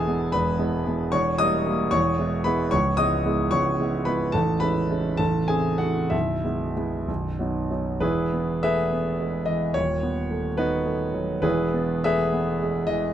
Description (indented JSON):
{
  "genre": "classical, romantic character piece for solo piano",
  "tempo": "62-77 BPM (dotted quarters)",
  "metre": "6/8",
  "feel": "rubato",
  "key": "E major",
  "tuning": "A4 = 440 Hz",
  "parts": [
    { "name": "warm grand piano", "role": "solo", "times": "0.0-13.1 s", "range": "A0 to D#6", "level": "-22 LUFS", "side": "equal", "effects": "none" }
  ],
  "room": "little or no reverb",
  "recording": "close, detailed microphones",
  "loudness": "-22 LUFS",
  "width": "side -10 dB against mid",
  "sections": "0.0-8.0 A section; 8.0-13.1 B section",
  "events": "none",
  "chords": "0.0 E; 1.1 Edim7; 1.9 E; 2.7 C#m7; 4.3 Amaj7; 5.2 Am; 6.1 E/B; 7.1 B; 8.0 E; 9.8 B7/D#; 11.4 E"
}